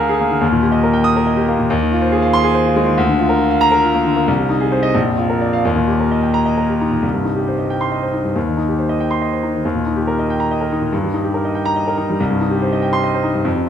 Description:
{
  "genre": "classical, virtuoso piano study",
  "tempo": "93 BPM (dotted quarters)",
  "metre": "6/8",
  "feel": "rubato",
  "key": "Eb major, C minor from 7.0 s",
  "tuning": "A4 = 439 Hz",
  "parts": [
    { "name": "clear concert grand piano", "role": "solo", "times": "0.0-13.7 s", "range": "Bb1 to F6", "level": "-14 LUFS", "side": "equal", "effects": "none" }
  ],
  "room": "wet recital hall reverb, RT60 1.6 s",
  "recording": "none",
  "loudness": "-14 LUFS",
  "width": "side -9 dB against mid",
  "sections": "0.0-7.0 A section; 7.0-13.7 B section",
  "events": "none",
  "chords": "0.4 Eb; 1.7 Fm7/Eb; 3.0 Bb/D; 4.3 Ab/C; 4.9 Bb; 5.6 Eb; 7.0 Cm; 8.4 Cm/Eb; 9.6 Eb; 10.9 Eb/G; 12.2 Cm",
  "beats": "| 0.42 1.05 | 1.70 2.34 | 2.98 3.62 | 4.28 4.95 | 5.64 6.34 | 7.04 7.70 | 8.35 8.99 | 9.64 10.28 | 10.92 11.56 | 12.20 12.83 | 13.46"
}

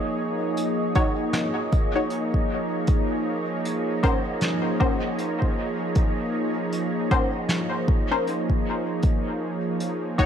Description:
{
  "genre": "ambient dub",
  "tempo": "78 BPM",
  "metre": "4/4",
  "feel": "swing 60% on 16ths",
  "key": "Bb minor",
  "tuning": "A4 = 441 Hz",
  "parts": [
    { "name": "warm analog pad", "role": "sustained chords", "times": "0.0-10.3 s", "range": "F3 to Db5", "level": "-26 LUFS", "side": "right 1 dB", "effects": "chorus" },
    { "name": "wind-like tuned noise texture", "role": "texture", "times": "0.0-10.3 s", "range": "Eb5", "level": "-34 LUFS", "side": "equal", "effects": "built-in reverb" },
    { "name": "jazz brush drum kit", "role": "drums", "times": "0.6-10.3 s", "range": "hi-hat, snare drum, woodblock", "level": "-30 LUFS", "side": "equal", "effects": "dub echo" },
    { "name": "filtered dub chord stab", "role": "stabs", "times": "1.0-10.3 s", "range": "Db4 to Db5", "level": "-29 LUFS", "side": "left 3 dB", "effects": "chorus, dub echo" },
    { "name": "electronic kick drum", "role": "drums", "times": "1.0-10.3 s", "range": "none", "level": "-22 LUFS", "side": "equal", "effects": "none" }
  ],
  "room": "light reverb, small room ambience",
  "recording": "none",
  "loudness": "-22 LUFS",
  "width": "side -8 dB against mid",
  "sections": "0.0-10.3 A section",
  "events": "none",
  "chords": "0.0 Ebm7; 2.9 Bbmadd9; 9.0 Eb7(no3)",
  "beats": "0.57 1.34 2.11 | 2.88 3.65 4.42 5.19 | 5.96 6.72 7.49 8.26 | 9.03 9.80"
}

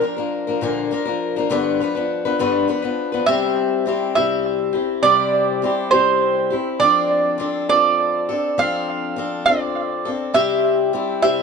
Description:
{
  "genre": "rock",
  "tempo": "68 BPM (dotted quarters)",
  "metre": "6/8",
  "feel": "straight",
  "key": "C major from 3.3 s",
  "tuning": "A4 = 440 Hz",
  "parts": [
    { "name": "picked swing-style acoustic guitar", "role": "accompaniment", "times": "0.0-11.4 s", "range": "G2 to B4", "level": "-20 LUFS", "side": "left 5 dB", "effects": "none" },
    { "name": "mandolin", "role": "melody", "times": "3.3-11.4 s", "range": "C5 to F5", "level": "-18 LUFS", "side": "right 5 dB", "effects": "analog delay" }
  ],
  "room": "light reverb",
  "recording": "dark, warm production",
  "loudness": "-17 LUFS",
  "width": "side -5 dB against mid",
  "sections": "0.0-3.3 A section; 3.3-11.4 B section",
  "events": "none",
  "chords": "0.0 Bb; 1.5 G7; 3.3 C; 6.8 F6; 10.4 C",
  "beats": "0.62 | 1.51 2.39 | 3.28 4.16 | 5.05 5.93 | 6.82 7.70 | 8.59 9.47 | 10.36 11.24"
}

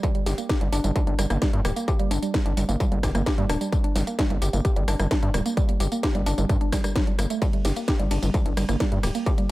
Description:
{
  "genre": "driving peak-time techno",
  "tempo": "130 BPM",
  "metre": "4/4",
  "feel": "straight",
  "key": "G minor",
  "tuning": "A4 = 440 Hz",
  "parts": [
    { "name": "woody wave-folded pluck", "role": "riff", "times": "0.0-9.4 s", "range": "F#3 to G4", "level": "-28 LUFS", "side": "right 2 dB", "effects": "chorus, sidechain pumping, tape echo" },
    { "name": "electronic kick drum", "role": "drums", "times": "0.0-9.4 s", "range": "none", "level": "-24 LUFS", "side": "equal", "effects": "distortion, overdrive" },
    { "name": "techno drum kit", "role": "drums", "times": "0.0-9.5 s", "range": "hi-hat, ride cymbal, rim click, snare drum, tambourine", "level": "-30 LUFS", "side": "left 1 dB", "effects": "overdrive" },
    { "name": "gritty driven synth bass", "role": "bass", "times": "0.3-9.1 s", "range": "D1 to G2", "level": "-25 LUFS", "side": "equal", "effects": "sidechain pumping" }
  ],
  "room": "light reverb",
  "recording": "echo-heavy mix",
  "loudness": "-21 LUFS",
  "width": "side -17 dB against mid",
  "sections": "0.0-9.5 A section",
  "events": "none",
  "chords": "none",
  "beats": "| 0.03 0.49 0.96 1.42 | 1.88 2.34 2.80 3.26 | 3.73 4.19 4.65 5.11 | 5.57 6.03 6.50 6.96 | 7.42 7.88 8.34 8.80 | 9.26"
}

